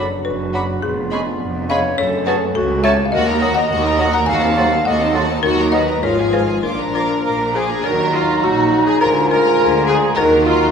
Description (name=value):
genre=cinematic, playful, whimsical film cue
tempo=104 BPM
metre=2/4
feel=straight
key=F# minor, Eb minor from 3.1 s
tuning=A4 = 440 Hz
part: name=folk marimba with medium hard mallets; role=melody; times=0.0-10.7 s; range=F4 to Bb5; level=-23 LUFS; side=left 4 dB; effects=none
part: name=rich studio violin section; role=melody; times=0.0-10.7 s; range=F4 to D6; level=-27 LUFS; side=left 3 dB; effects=none
part: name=clear studio violin section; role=second line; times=0.0-10.7 s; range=Eb4 to Bb4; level=-25 LUFS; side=left 2 dB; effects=none
part: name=mellow hollow small flute group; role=second line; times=0.0-10.7 s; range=Bb5 to F6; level=-25 LUFS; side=left 2 dB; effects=none
part: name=warm clarinet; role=second line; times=0.0-10.7 s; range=Eb4 to Gb5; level=-22 LUFS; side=equal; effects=none
part: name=warm oboe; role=second line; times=0.0-10.7 s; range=Gb5 to B5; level=-26 LUFS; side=right 3 dB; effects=none
part: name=warm bassoon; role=accompaniment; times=0.0-10.7 s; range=Eb3 to G#3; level=-27 LUFS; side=right 2 dB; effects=none
part: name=warm studio viola section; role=accompaniment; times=0.0-10.7 s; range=A3 to Bb4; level=-21 LUFS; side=equal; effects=none
part: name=mellow French horn section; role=sustained chords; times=0.0-10.7 s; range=F3 to F4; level=-23 LUFS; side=left 2 dB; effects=none
part: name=rich studio cello section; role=bass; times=0.0-10.7 s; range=C#2 to Eb3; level=-24 LUFS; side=right 2 dB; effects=none
part: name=rich studio double bass section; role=bass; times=0.0-10.7 s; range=E#1 to Eb2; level=-25 LUFS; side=right 4 dB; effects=none
room=wet concert hall reverb, RT60 1.9 s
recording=recorded in a church or concert hall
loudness=-14 LUFS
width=side -6 dB against mid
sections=0.0-7.9 A section; 7.9-10.7 B section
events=none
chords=0.0 Bm/F#; 0.8 C#7/E#; 2.0 F#m; 3.1 Ebm; 4.3 Ebdim7; 5.4 Ebm; 6.0 Fdim/Ab; 6.6 Bb; 7.9 Ebm; 9.0 Bb7/D; 10.2 Ebm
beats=0.25 | 0.83 1.41 | 1.99 2.56 | 3.13 3.70 | 4.28 4.85 | 5.43 6.02 | 6.64 7.25 | 7.85 8.44 | 9.02 9.60 | 10.17